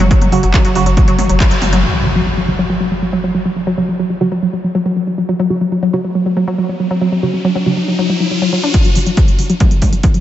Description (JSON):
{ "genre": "driving peak-time techno", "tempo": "139 BPM", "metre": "4/4", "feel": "straight", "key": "unclear", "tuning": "A4 = 440 Hz", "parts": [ { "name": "resonant blip pluck", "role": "riff", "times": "0.0-10.2 s", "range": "F#3 to D4", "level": "-16 LUFS", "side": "equal", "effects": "chorus, sidechain pumping, diffuse ambient delay" }, { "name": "warm sub bass", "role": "bass", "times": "0.0-1.8 s", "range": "F#1", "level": "-17 LUFS", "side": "equal", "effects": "overdrive, sidechain pumping, low-pass filter" }, { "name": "swarming drone", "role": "drone", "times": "0.0-1.9 s", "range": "F#3 to F#4", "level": "-25 LUFS", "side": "left 1 dB", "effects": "built-in reverb, sidechain pumping" }, { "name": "techno drum kit", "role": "drums", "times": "0.0-1.8, 8.7-10.2 s", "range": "handclaps, hi-hat, toms", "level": "-21 LUFS", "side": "equal", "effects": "none" }, { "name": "electronic kick drum", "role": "drums", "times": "0.1-1.5, 8.7-10.1 s", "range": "none", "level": "-12 LUFS", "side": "equal", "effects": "none" }, { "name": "filtered dub chord stab", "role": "stabs", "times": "0.3-9.5 s", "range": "C#3 to F#4", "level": "-23 LUFS", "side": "right 3 dB", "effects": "phaser, sidechain pumping, tape echo" }, { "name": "impact and riser", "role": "sound effects", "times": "1.8-8.7 s", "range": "none", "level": "-22 LUFS", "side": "left 1 dB", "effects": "none" } ], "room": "moderate huge ambient reverb, RT60 7.4 s", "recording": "dreamy mix soaked in reverb, nothing above 7.9 kHz", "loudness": "-12 LUFS", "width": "side -12 dB against mid", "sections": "0.0-1.8 A section; 1.8-8.7 B section; 8.7-10.2 C section", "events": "drop 0.0-1.8; band accent 1.4; impact 1.8-3.6; filter sweep on synth arpeggio sound 1.8-8.7, 8.7-10.2; riser 6.3-8.7; build-up 8.7-10.2; filter sweep 8.7-10.2", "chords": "0.0 F#5" }